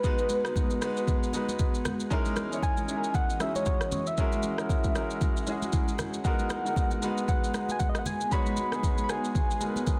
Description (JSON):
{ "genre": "amapiano", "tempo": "116 BPM", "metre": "4/4", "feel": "swing 58% on 16ths", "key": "unclear", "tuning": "A4 = 439 Hz", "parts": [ { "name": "soft struck synth lead", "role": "melody", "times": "0.0-10.0 s", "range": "B4 to B5", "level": "-35 LUFS", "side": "equal", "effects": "chorus, digital delay" }, { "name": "clear grand piano", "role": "accompaniment", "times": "0.0-10.0 s", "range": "G#3 to C#5", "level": "-35 LUFS", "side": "equal", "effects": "none" }, { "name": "ethereal airy pad", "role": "sustained chords", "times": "0.0-10.0 s", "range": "E3 to D#5", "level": "-41 LUFS", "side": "equal", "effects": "ensemble chorus, built-in reverb, sidechain pumping" }, { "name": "afro-pop drum kit", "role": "drums", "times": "0.0-10.0 s", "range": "kick drum, rim click, shaker", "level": "-31 LUFS", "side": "equal", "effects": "none" }, { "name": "congas", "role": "percussion", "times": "0.2-10.0 s", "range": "none", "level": "-41 LUFS", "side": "equal", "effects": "none" } ], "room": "light reverb", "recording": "dense, heavily limited modern master", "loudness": "-29 LUFS", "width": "mono", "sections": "0.0-10.0 A section", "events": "none", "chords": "0.0 G#m9; 2.1 C#m69; 4.2 F#9; 6.2 G#m9", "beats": "| 0.04 0.56 1.08 1.59 | 2.11 2.63 3.15 3.66 | 4.18 4.70 5.21 5.73 | 6.25 6.76 7.28 7.80 | 8.32 8.83 9.35 9.87" }